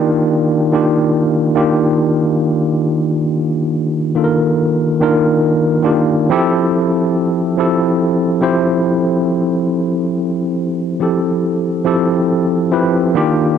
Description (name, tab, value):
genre	hip hop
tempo	70 BPM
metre	4/4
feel	swing 60% on 16ths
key	unclear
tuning	A4 = 440 Hz
part	tine electric piano	solo	0.0-13.6 s	Eb3 to C5	-13 LUFS	equal	medium stereo tremolo, cassette tape, low-pass filter
room	moderate plate reverb, RT60 2.8 s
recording	cassette tape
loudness	-13 LUFS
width	side -8 dB against mid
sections	0.0-13.6 A section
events	none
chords	0.0 Ebmaj9; 6.3 Fmaj9